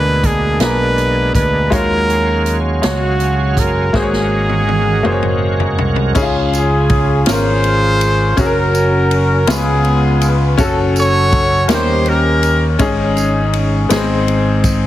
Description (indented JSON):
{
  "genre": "slow gospel",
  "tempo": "54 BPM (dotted quarters)",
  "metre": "6/8",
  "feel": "straight",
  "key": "Db major",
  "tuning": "A4 = 440 Hz",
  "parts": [
    { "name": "bright trumpet", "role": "melody", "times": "0.0-5.8 s", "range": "Gb4 to Cb5", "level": "-18 LUFS", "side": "right 1 dB", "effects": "tape echo" },
    { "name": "bright grand piano", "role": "accompaniment", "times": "0.0-14.9 s", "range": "Ab2 to Bb5", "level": "-18 LUFS", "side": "left 2 dB", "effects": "none" },
    { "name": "bright tonewheel organ", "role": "sustained chords", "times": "0.0-6.1 s", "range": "Cb3 to F5", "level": "-23 LUFS", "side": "right 4 dB", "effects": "overdrive, chorus vibrato, slow rotary speaker" },
    { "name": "fingered electric bass", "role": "bass", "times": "0.0-14.9 s", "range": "Gb1 to Eb2", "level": "-17 LUFS", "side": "equal", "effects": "none" },
    { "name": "swinging big-band drum kit", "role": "drums", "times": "0.2-14.8 s", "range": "crash cymbal, hi-hat, kick drum, ride cymbal, snare drum, toms", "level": "-20 LUFS", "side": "equal", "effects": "none" },
    { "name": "clear horn section", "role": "melody", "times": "6.2-13.9 s", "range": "Cb4 to Db5", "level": "-16 LUFS", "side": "equal", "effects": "tape echo" },
    { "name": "tambourine", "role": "percussion", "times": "6.2-14.9 s", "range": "none", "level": "-29 LUFS", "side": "right 6 dB", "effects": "none" }
  ],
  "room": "small room ambience",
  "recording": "heavily compressed radio sound, multiband compression",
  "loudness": "-12 LUFS",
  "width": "side -13 dB against mid",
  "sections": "0.0-6.2 A section; 6.2-14.9 B section",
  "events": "drum fill 3.9-6.2",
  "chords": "0.0 Bb7b9/D; 1.7 Ebm11; 3.9 Ab9sus4; 6.2 Db; 8.4 Gb; 9.5 Db7; 10.6 Gbm; 11.7 Eb7; 12.8 Absus4; 13.9 Ab"
}